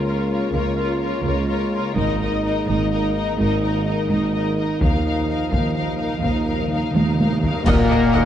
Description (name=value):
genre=cinematic, epic orchestral film score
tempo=84 BPM (dotted quarters)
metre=12/8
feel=straight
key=unclear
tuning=A4 = 440 Hz
part: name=warm symphonic violin section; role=melody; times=0.0-8.3 s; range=A#4 to F5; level=-29 LUFS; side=left 6 dB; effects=none
part: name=warm symphonic violin section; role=second line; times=0.0-8.2 s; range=Bb4 to F#5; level=-30 LUFS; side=left 7 dB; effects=none
part: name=warm symphonic viola section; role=accompaniment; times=0.0-8.2 s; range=Eb4 to D#5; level=-30 LUFS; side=right 2 dB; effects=none
part: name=dark French horn section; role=sustained chords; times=0.0-8.3 s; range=A#3 to F4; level=-25 LUFS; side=left 4 dB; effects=none
part: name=mellow trombone section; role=sustained chords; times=0.0-8.3 s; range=A#2 to Ab3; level=-30 LUFS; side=right 3 dB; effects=none
part: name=mellow tuba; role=bass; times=0.0-8.2 s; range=Ab1 to D#2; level=-26 LUFS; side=right 3 dB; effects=none
part: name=rich studio double bass section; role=bass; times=0.0-8.2 s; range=Ab1 to Eb2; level=-28 LUFS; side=right 2 dB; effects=none
part: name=rich symphonic cello section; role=bass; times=0.0-8.3 s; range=Db2 to A#2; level=-27 LUFS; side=right 2 dB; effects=none
part: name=taiko ensemble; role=drums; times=2.0-8.3 s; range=none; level=-23 LUFS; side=equal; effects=none
part: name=timpani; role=percussion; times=4.8-7.7 s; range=Eb3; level=-29 LUFS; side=equal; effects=none
part: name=silver concert flute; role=second line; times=7.7-8.3 s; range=A#4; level=-29 LUFS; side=equal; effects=none
part: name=warm woodwind section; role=sustained chords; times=7.7-8.3 s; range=D#4 to F#5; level=-31 LUFS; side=left 1 dB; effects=none
part: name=clear trumpet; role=stabs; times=7.7-8.3 s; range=A#3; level=-26 LUFS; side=right 1 dB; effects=none
part: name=clash cymbals and concert bass drum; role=percussion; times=7.7-8.3 s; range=none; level=-24 LUFS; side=equal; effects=none
room=wet scoring stage reverb, RT60 1.8 s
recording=dark, warm production, nothing above 10.6 kHz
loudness=-18 LUFS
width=side -10 dB against mid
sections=0.0-7.7 A section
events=timpani fill 4.8-7.7; drum fill 7.0-7.7; band accent 7.7-8.1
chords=0.0 Db6; 2.0 Absus2; 4.8 Ebsus2; 7.7 D#m